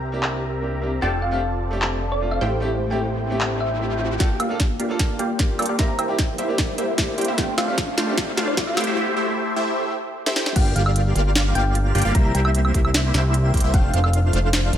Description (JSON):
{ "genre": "future bass", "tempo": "151 BPM", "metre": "4/4", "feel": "half-time", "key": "G dorian", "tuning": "A4 = 440 Hz", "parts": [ { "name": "supersaw stab", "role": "riff", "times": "0.0-14.8 s", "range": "A3 to Bb5", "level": "-25 LUFS", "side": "equal", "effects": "phaser, sidechain pumping, low-pass filter" }, { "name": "fat analog bass", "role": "bass", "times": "0.0-14.8 s", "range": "F1 to G2", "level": "-23 LUFS", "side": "equal", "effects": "sidechain pumping, high-pass filter" }, { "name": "bright grand piano", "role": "accompaniment", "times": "0.1-8.8 s", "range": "A3 to A4", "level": "-30 LUFS", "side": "right 1 dB", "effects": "sidechain pumping, dub echo" }, { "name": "trap drum kit", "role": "drums", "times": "0.2-14.8 s", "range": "crash cymbal, handclaps, hi-hat, snare drum, woodblock", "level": "-24 LUFS", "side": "equal", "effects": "low-pass filter on snare, studio reverb, low-pass filter on hats, low-pass filter on perc, low-pass filter on cymbals" }, { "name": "thumb-piano-like synth pluck", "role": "melody", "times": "1.0-14.1 s", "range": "D5 to Bb5", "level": "-30 LUFS", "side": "left 1 dB", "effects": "lush chorus, sidechain pumping, dub echo" }, { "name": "riser", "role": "sound effects", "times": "2.2-9.0 s", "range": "none", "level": "-33 LUFS", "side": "left 2 dB", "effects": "none" }, { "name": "electronic kick drum", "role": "drums", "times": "4.2-13.8 s", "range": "none", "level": "-21 LUFS", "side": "equal", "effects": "studio reverb" }, { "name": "airy dreamy lead", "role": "arpeggios", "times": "10.6-14.8 s", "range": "E5 to G5", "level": "-32 LUFS", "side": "equal", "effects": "chorus, vintage 12-bit sampler grit, sidechain pumping, dub echo" } ], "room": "light reverb", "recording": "high-pass filter", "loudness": "-19 LUFS", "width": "side -10 dB against mid", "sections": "0.0-4.2 A section; 4.2-10.6 B section; 10.6-14.8 C section", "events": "riser 2.2-4.2, 4.2-9.0; build-up 4.2-10.6; drum fill 4.2-9.0, 10.3; filter sweep on supersaw synth 4.2-10.6; filter sweep on synth pluck 4.2-10.6; filter sweep 4.2-10.6; drop 10.6-14.8", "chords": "0.0 C7; 1.0 F6; 2.4 Am7; 4.2 Gm7; 5.8 C7; 7.4 F6; 8.8 Am7; 10.6 Gm7; 12.1 C7; 13.7 F6", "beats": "0.23 0.62 | 1.02 1.42 1.82 2.21 | 2.61 3.01 3.41 3.80 | 4.20 4.60 5.00 5.39 | 5.79 6.19 6.59 6.98 | 7.38 7.78 8.18 8.57 | 8.97 9.37 9.76 10.16 | 10.56 10.96 11.35 11.75 | 12.15 12.55 12.94 13.34 | 13.74 14.13 14.53" }